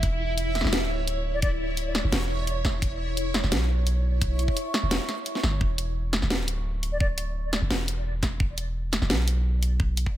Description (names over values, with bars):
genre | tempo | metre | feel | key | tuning
half-time drum and bass | 172 BPM | 4/4 | half-time | unclear | A4 = 439 Hz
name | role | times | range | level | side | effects
long sustained 808-style bass | bass | 0.0-10.1 s | D1 to B1 | -26 LUFS | equal | tube saturation
drum and bass drum kit | drums | 0.0-10.0 s | hi-hat, snare drum | -28 LUFS | equal | studio reverb
electronic kick drum | drums | 0.0-10.1 s | none | -26 LUFS | equal | studio reverb
backwards swelling texture | texture | 0.0-5.6 s | E4 to C#5 | -32 LUFS | right 1 dB | built-in reverb
mellow silver concert flute | melody | 1.3-1.5, 6.9-7.1 s | D5 | -35 LUFS | left 1 dB | dub echo
room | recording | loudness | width
light reverb, digital ambience | echo-heavy mix | -24 LUFS | side -13 dB against mid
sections
0.0-5.6 A section; 5.6-10.2 A section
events
drop 0.0-5.6, 5.6-10.2; kick drops out 5.3-5.6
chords
0.0 E5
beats
| 0.03 0.38 0.73 1.08 | 1.43 1.77 2.12 2.47 | 2.82 3.17 3.52 3.87 | 4.22 4.57 4.91 5.26 | 5.61 5.96 6.31 6.66 | 7.01 7.36 7.70 8.05 | 8.40 8.75 9.10 9.45 | 9.80